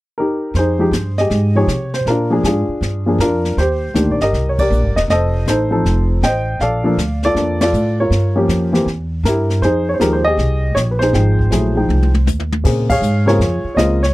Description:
jazz piano trio; 159 BPM; 4/4; swing 66% on 8ths; F minor; A4 = 437 Hz
warm baby grand piano; melody; 0.2-14.1 s; Db3 to G5; -16 LUFS; equal
upright bass; bass; 0.5-14.1 s; Eb1 to C3; -17 LUFS; equal
jazz brush drum kit; drums; 0.5-14.1 s; brushed snare drum, crash cymbal, hi-hat, kick drum, ride cymbal, snare drum, toms; -23 LUFS; left 1 dB
little or no reverb; dry, close 1970s-style studio recording; -14 LUFS; side -18 dB against mid
0.6-12.6 A section; 12.6-14.1 B section
band accent 4.5, 7.5, 12.8; drum fill 11.9-12.6
0.0 Eb; 0.6 Fm9; 2.1 Bb7; 3.6 Ebmaj7; 5.1 F7; 6.6 Bbmaj7; 8.1 Gm7b5; 8.9 Edim; 9.6 Fm9; 12.6 Bbm9
0.17 | 0.55 0.93 1.31 1.69 | 2.06 2.44 2.82 3.20 | 3.58 3.95 4.33 4.71 | 5.09 5.47 5.84 6.22 | 6.60 6.98 7.36 7.73 | 8.11 8.49 8.87 9.25 | 9.62 10.00 10.38 10.76 | 11.13 11.51 11.89 12.27 | 12.65 13.02 13.40 13.78

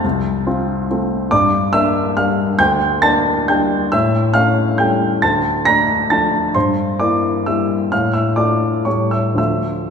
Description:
classical, piano waltz; 110-149 BPM; 3/4; rubato; D minor; A4 = 444 Hz
warm grand piano; solo; 0.0-9.9 s; C2 to Bb6; -14 LUFS; equal
wet scoring stage reverb, RT60 2.0 s; heard from further back in the room; -14 LUFS; side -6 dB against mid
0.0-9.9 A section
0.0 F; 1.3 Gm; 3.9 A7; 5.2 Dm; 6.5 Edim/G; 7.9 Dm/A; 8.9 A7; 9.4 Dm
| 0.04 0.47 0.90 | 1.32 1.74 2.17 | 2.60 3.02 3.49 | 3.93 4.35 4.79 | 5.22 5.65 6.11 | 6.55 7.00 7.47 | 7.92 8.36 8.86 | 9.38

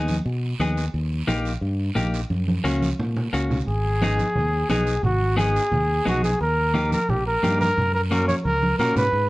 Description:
latin, cumbia; 176 BPM; 4/4; straight; G# minor; A4 = 439 Hz
semi-hollow electric guitar; accompaniment; 0.0-9.0 s; A#3 to G#4; -26 LUFS; left 2 dB
fingered electric bass; bass; 0.0-9.3 s; G#1 to B2; -24 LUFS; equal
congas; percussion; 0.1-9.0 s; -28 LUFS; right 1 dB
guiro; percussion; 0.1-9.3 s; -39 LUFS; right 6 dB
breathy trumpet; melody; 3.7-9.3 s; F#4 to C#5; -22 LUFS; equal; plate reverb
moderate large studio reverb, RT60 0.9 s; worn, warbling old tape, cassette tape, warbly pitch drift, faint mains hum; -20 LUFS; side -19 dB against mid
0.0-3.7 A section; 3.7-9.3 B section
drum fill 2.3-3.7, 8.3-9.1
0.0 G#m; 0.9 D#; 2.3 F#; 3.7 G#m; 6.4 D#; 7.8 F#
0.26 0.60 | 0.94 1.28 1.62 1.97 | 2.31 2.65 2.99 3.33 | 3.67 4.01 4.36 4.70 | 5.04 5.38 5.72 6.06 | 6.40 6.75 7.09 7.43 | 7.77 8.11 8.45 8.79 | 9.13

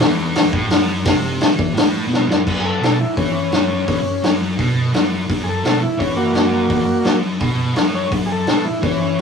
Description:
garage rock duo or trio; 170 BPM; 4/4; straight; A4 = 441 Hz
fuzz guitar; riff; 0.0-9.2 s; E2 to E3; -20 LUFS; left 1 dB; distortion
vintage drum kit; drums; 0.0-9.2 s; crash cymbal, hi-hat, kick drum, snare drum; -18 LUFS; left 1 dB
overdriven combo organ; melody; 2.6-9.2 s; A#3 to C#5; -20 LUFS; equal
moderate booth ambience, RT60 0.2 s; rough rehearsal-room recording, warm saturation; -15 LUFS; side -6 dB against mid
0.0-2.5 A section; 2.5-9.2 B section
drum fill 2.1-2.5
0.0 Esus24; 2.5 F#5
0.01 0.36 0.71 | 1.06 1.41 1.76 2.12 | 2.47 2.82 3.17 3.52 | 3.88 4.23 4.58 4.93 | 5.29 5.64 5.99 6.35 | 6.70 7.06 7.41 7.76 | 8.12 8.47 8.83 9.19

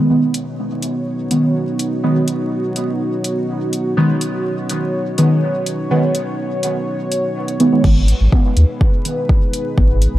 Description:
dub techno; 124 BPM; 4/4; straight; G# minor; A4 = 441 Hz
dark analog pad; sustained chords; 0.0-10.2 s; B3 to C#5; -21 LUFS; equal; chorus, sidechain pumping
deep mellow chord stab; stabs; 0.0-9.9 s; D#3 to B3; -18 LUFS; right 1 dB; chorus, phaser, sidechain pumping, dub echo
deep house drum kit; drums; 0.3-10.1 s; crash cymbal, hi-hat; -26 LUFS; left 1 dB
warm sub bass; bass; 7.8-10.2 s; G#1 to D#2; -12 LUFS; equal; sidechain pumping
electronic kick drum; drums; 7.8-9.9 s; -14 LUFS; equal
light reverb; vinyl crackle; -15 LUFS; side -14 dB against mid
0.0-7.8 A section; 7.8-10.2 B section
filter sweep on analog synth pad 0.0-7.8
0.0 G#m
| 0.10 0.58 1.07 1.55 | 2.04 2.52 3.00 3.49 | 3.97 4.45 4.94 5.42 | 5.91 6.39 6.87 7.36 | 7.84 8.32 8.81 9.29 | 9.78

